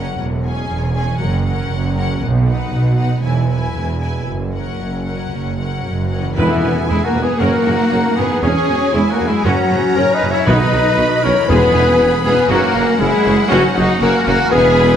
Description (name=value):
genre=cinematic, heroic adventure film score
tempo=118 BPM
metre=4/4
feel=straight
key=unclear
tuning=A4 = 440 Hz
part: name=rich symphonic violin section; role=melody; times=0.0-15.0 s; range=F#5 to B5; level=-27 LUFS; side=left 3 dB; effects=none
part: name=rich studio violin section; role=second line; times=0.0-15.0 s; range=B3 to C#5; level=-26 LUFS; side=left 2 dB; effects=none
part: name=clear symphonic viola section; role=accompaniment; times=0.0-15.0 s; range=G#3 to B4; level=-26 LUFS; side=equal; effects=none
part: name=concert harp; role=arpeggios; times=0.0-15.0 s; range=E2 to E5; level=-28 LUFS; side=left 6 dB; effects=none
part: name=clear symphonic double bass section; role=bass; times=0.0-15.0 s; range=E1 to F#2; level=-20 LUFS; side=right 3 dB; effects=none
part: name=warm symphonic cello section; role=bass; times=0.0-15.0 s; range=E2 to E4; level=-21 LUFS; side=right 2 dB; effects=none
part: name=timpani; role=percussion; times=2.2-2.9, 6.4-7.1, 10.5-12.2 s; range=E2 to B2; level=-21 LUFS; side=equal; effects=none
part: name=large flute ensemble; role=second line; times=6.4-15.0 s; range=E4 to E5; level=-25 LUFS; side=left 1 dB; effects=none
part: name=mellow cor anglais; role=second line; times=6.4-15.0 s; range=E4 to E5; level=-26 LUFS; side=right 1 dB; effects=none
part: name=warm French horn section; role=sustained chords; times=6.4-15.0 s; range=E4 to E5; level=-18 LUFS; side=left 4 dB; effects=none
part: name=clear trumpet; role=stabs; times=6.4-15.0 s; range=B3 to C#5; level=-22 LUFS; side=right 1 dB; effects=none
part: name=warm tuba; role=bass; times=6.4-15.0 s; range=E1 to B1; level=-22 LUFS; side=right 2 dB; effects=none
part: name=warm clarinet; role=second line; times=7.4-15.0 s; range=C#4 to F#4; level=-27 LUFS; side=left 1 dB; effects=none
room=wet scoring stage reverb, RT60 1.7 s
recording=none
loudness=-13 LUFS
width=side -9 dB against mid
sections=0.0-6.4 A section; 6.4-15.0 B section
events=none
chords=0.2 C#m/E; 1.2 F#; 2.2 B; 3.2 E; 4.3 F#; 6.4 E; 7.4 F#; 8.4 C#m/E; 9.5 F#; 10.5 B; 11.5 E; 12.5 F#